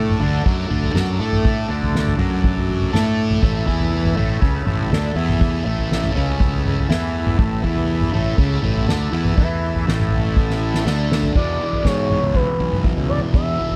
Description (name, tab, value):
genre	psychedelic rock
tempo	121 BPM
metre	4/4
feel	straight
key	unclear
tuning	A4 = 440 Hz
part	combo organ	sustained chords	0.0-11.3 s	A3 to A5	-33 LUFS	equal	none
part	fuzz guitar	riff	0.0-13.8 s	E2 to A4	-27 LUFS	equal	distortion, phaser
part	fuzz fingered electric bass	bass	0.0-13.6 s	A1 to A2	-24 LUFS	equal	overdrive
part	soft-mallet drum kit	drums	0.1-13.8 s	crash cymbal, kick drum, snare drum, toms	-23 LUFS	equal	none
part	expressive portamento lead	melody	11.4-13.8 s	B4 to E5	-25 LUFS	equal	chorus, slapback echo
room	little or no reverb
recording	dry, close 1970s-style studio recording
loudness	-19 LUFS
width	mono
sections	0.0-11.4 A section; 11.4-13.8 B section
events	drum fill 10.4-11.4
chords	0.0 D5; 3.4 A5; 11.4 E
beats	0.46 0.95 | 1.45 1.95 2.44 2.94 | 3.43 3.93 4.42 4.92 | 5.41 5.91 6.40 6.90 | 7.39 7.89 8.38 8.88 | 9.37 9.87 10.36 10.86 | 11.36 11.85 12.35 12.85 | 13.34